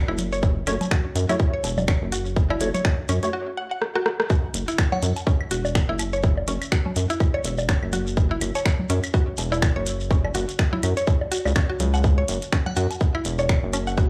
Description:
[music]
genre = minimal techno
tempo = 124 BPM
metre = 4/4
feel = swing 57% on 16ths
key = F# minor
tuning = A4 = 440 Hz
[part]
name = rubbery square bass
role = bass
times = 0.0-14.1 s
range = E1 to F#2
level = -27 LUFS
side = equal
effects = sidechain pumping
[part]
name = mallet-like synth pluck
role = riff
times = 0.1-14.0 s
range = C#4 to F#5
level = -31 LUFS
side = equal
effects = chorus, sidechain pumping, tape echo
[part]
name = claves, congas, woodblock and bongos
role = percussion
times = 0.1-13.8 s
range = none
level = -33 LUFS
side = equal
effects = overdrive, analog delay
[part]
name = minimal click drum kit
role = drums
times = 0.2-13.8 s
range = finger snaps, hi-hat, rim click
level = -30 LUFS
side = equal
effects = none
[part]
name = shekere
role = percussion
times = 0.2-14.1 s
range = none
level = -38 LUFS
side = equal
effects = none
[part]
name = electronic kick drum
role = drums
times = 0.4-14.1 s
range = none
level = -23 LUFS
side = equal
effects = none
[part]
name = percussive organ stab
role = stabs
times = 0.7-3.3 s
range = A3 to C#5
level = -31 LUFS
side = equal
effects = ensemble chorus, cassette tape, analog delay
[part]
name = glassy synth bell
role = melody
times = 4.9-5.1, 12.7-12.9 s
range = F#5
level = -35 LUFS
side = equal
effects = chorus, vintage 12-bit sampler grit, analog delay
[sound]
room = digital ambience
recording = dry, gritty hardware recording, transformer saturation, small room reverb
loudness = -23 LUFS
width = mono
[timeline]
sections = 0.0-4.3 A section; 4.3-14.1 B section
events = break 3.3-4.3; drum fill 3.8-4.3; band accent 4.2; drop 4.3-14.1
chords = 0.0 F#m; 4.3 F#5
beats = | 0.43 0.91 1.40 1.88 | 2.36 2.85 3.33 3.82 | 4.30 4.78 5.27 5.75 | 6.24 6.72 7.20 7.69 | 8.17 8.65 9.14 9.62 | 10.11 10.59 11.07 11.56 | 12.04 12.53 13.01 13.49 | 13.98

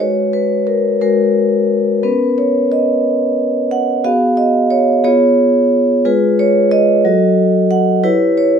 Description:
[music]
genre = classical, contemporary piece for solo vibraphone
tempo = 60 BPM (dotted quarters)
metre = 6/8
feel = straight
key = unclear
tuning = A4 = 440 Hz
[part]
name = vibraphone with soft mallets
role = solo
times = 0.0-8.6 s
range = Gb3 to F#5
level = -11 LUFS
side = equal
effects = none
[sound]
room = light reverb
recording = close, detailed microphones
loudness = -11 LUFS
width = side -7 dB against mid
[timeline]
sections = 0.0-8.6 A section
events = none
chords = 0.0 Abm9; 2.0 Bmaj9; 4.0 B69; 5.0 Db7/Cb; 6.0 Abm6; 7.0 Gbm6; 8.0 Em6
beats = | 0.00 1.01 | 2.03 3.04 | 4.04 5.04 | 6.05 7.04 | 8.04

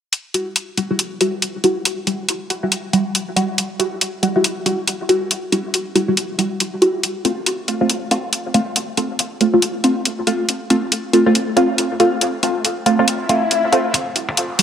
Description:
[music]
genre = deep dubstep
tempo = 139 BPM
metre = 4/4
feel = swing 60% on 16ths, half-time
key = E minor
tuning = A4 = 444 Hz
[part]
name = electronic hi-hat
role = drums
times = 0.1-14.6 s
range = none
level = -18 LUFS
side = left 1 dB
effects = none
[part]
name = filtered dub chord stab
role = stabs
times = 0.3-14.6 s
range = G3 to F#4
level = -17 LUFS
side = equal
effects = phaser, analog chorus, dub echo
[part]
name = swell and riser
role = sound effects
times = 13.2-14.6 s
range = none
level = -22 LUFS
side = left 4 dB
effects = none
[part]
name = electronic kick drum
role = drums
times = 13.9-14.4 s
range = none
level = -28 LUFS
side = equal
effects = high-pass filter on kick
[sound]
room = wet lush hall reverb, RT60 1.9 s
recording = bright 1980s-style digital production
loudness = -16 LUFS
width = side -9 dB against mid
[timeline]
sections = 0.1-13.9 A section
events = filter sweep on synth stab 0.1-13.9; swell 13.2-13.9; riser 13.9-14.6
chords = 0.1 Emadd9; 7.0 F; 13.9 Emadd9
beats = | 0.13 0.56 0.99 1.42 | 1.85 2.29 2.72 3.15 | 3.58 4.01 4.44 4.88 | 5.31 5.74 6.17 6.60 | 7.03 7.47 7.90 8.33 | 8.76 9.19 9.62 10.06 | 10.49 10.92 11.35 11.78 | 12.21 12.65 13.08 13.51 | 13.94 14.37

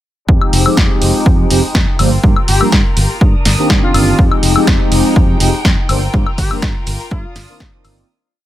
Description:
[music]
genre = filtered disco house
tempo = 123 BPM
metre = 4/4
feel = straight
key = F dorian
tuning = A4 = 440 Hz
[part]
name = mellow synth brass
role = accompaniment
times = 0.3-8.1 s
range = Eb3 to C5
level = -16 LUFS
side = equal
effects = chorus, phaser, sidechain pumping, low-pass filter
[part]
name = clear studio violin section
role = sustained chords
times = 0.3-8.1 s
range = Ab3 to Eb6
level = -24 LUFS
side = left 2 dB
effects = sidechain pumping, low-pass filter
[part]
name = fingered electric bass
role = bass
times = 0.3-8.0 s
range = F1 to G2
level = -16 LUFS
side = equal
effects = sidechain pumping, low-pass filter
[part]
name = electronic kick drum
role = drums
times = 0.3-7.7 s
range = none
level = -13 LUFS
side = equal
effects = none
[part]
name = maracas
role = percussion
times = 0.3-8.1 s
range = none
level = -39 LUFS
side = left 1 dB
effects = none
[part]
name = punchy analog drum machine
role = drums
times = 0.4-7.9 s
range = hi-hat, snare drum, woodblock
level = -17 LUFS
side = left 1 dB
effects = none
[part]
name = bright horn section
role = melody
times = 2.5-7.6 s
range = F4 to G4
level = -22 LUFS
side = left 2 dB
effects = sidechain pumping, low-pass filter, tape echo
[sound]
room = studio ambience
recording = none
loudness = -10 LUFS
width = side -13 dB against mid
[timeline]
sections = 0.3-8.1 groove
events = filter sweep 0.3-8.1; fade-out 5.5-8.1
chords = 0.3 Fm9; 2.0 Gm7; 3.2 Cm9/G; 4.2 Fm9; 5.9 Gm7; 7.1 Cm9/G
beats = | 0.29 0.77 1.26 1.75 | 2.24 2.73 3.21 3.70 | 4.19 4.68 5.16 5.65 | 6.14 6.63 7.12 7.60

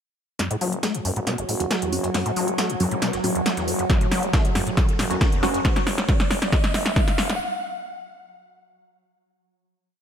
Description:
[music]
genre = driving peak-time techno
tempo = 137 BPM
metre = 4/4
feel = straight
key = F# minor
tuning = A4 = 437 Hz
[part]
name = overdriven acid bass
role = riff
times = 0.4-5.6 s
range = F#1 to A3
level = -27 LUFS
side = left 1 dB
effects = analog chorus, sidechain pumping, ping-pong delay
[part]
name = swarming drone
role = drone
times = 1.4-5.7 s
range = F#3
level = -32 LUFS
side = right 1 dB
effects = built-in reverb, sidechain pumping
[part]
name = breakbeat sampler-style drum kit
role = drums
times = 0.4-5.6 s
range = hi-hat, snare drum, tambourine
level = -33 LUFS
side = right 1 dB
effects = sidechain pumping on perc, high-pass filter on perc, high-pass filter on snare, sidechain pumping on hats, high-pass filter on hats
[part]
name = techno drum kit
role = drums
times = 0.4-7.4 s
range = hi-hat, snare drum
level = -26 LUFS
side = equal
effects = sidechain pumping on hats
[part]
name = riser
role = sound effects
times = 2.5-7.4 s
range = none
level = -32 LUFS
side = equal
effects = none
[part]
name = warbly tape-like pad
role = texture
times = 0.4-5.6 s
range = F#4 to F#5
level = -31 LUFS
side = right 2 dB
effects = chorus, built-in reverb, sidechain pumping
[part]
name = growling FM bass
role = bass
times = 0.6-7.4 s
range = E1 to F#1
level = -34 LUFS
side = equal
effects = sidechain pumping, high-pass filter
[part]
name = filtered dub chord stab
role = stabs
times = 1.6-5.5 s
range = F#3 to F#4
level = -28 LUFS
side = right 1 dB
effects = phaser, sidechain pumping, ping-pong delay
[part]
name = electronic kick drum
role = drums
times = 3.9-7.1 s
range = none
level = -21 LUFS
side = equal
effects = none
[sound]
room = light reverb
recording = none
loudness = -20 LUFS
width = side -8 dB against mid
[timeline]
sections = 0.4-7.4 build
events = build-up 0.4-7.4; drum fill 0.4-7.4; filter sweep on acid bass 0.4-5.6; filter sweep on synth stab 0.4-5.6; riser 2.5-7.4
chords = 0.4 F#5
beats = | 0.39 0.83 1.27 1.71 | 2.15 2.58 3.02 3.46 | 3.90 4.33 4.77 5.21 | 5.65 6.09 6.53 6.96

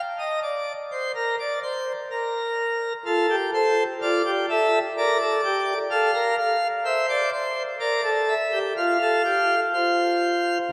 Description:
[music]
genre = classical, baroque-style 3-part fugue for pipe organ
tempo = 63 BPM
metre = 4/4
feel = straight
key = unclear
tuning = A4 = 438 Hz
[part]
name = pipe organ, plenum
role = solo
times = 0.2-10.6 s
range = F4 to F5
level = -24 LUFS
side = equal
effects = none
[sound]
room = wet cathedral reverb, RT60 4.6 s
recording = none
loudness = -23 LUFS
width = mono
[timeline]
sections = 0.0-10.7 A section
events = none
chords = 0.0 N.C.; 3.1 F; 5.0 Bb; 6.9 C7; 8.8 F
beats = 0.19 1.15 2.10 | 3.06 4.01 4.96 5.91 | 6.86 7.81 8.77 9.74

